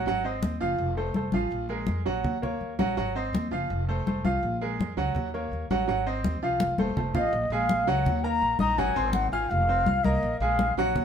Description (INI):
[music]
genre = latin, Cuban son and guajira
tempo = 165 BPM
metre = 4/4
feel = straight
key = Bb minor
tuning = A4 = 440 Hz
[part]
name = bright baby grand piano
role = arpeggios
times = 0.0-11.0 s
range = F3 to F6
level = -28 LUFS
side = right 2 dB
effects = none
[part]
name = upright bass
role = bass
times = 0.0-11.0 s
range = Eb1 to F2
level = -31 LUFS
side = equal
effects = none
[part]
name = congas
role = percussion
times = 0.1-11.0 s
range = none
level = -30 LUFS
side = left 2 dB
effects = none
[part]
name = bansuri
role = melody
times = 7.2-11.0 s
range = Eb5 to Bb5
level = -26 LUFS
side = left 2 dB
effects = none
[sound]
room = moderate studio reverb, RT60 0.5 s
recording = minimal, uncompressed stereo recording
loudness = -24 LUFS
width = side -8 dB against mid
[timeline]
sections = 0.0-7.3 A section; 7.3-11.0 B section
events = drum fill 6.6-7.3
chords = 0.1 Ab7; 0.8 F; 1.5 Bb5; 2.2 Ebm7; 3.0 Ab7; 3.7 F; 4.4 Bbm7; 5.2 Ebm7; 5.9 Ab7; 6.6 F7; 7.3 Bbm7; 8.1 Ebm; 8.8 Ab7; 9.5 F5; 10.2 Bb5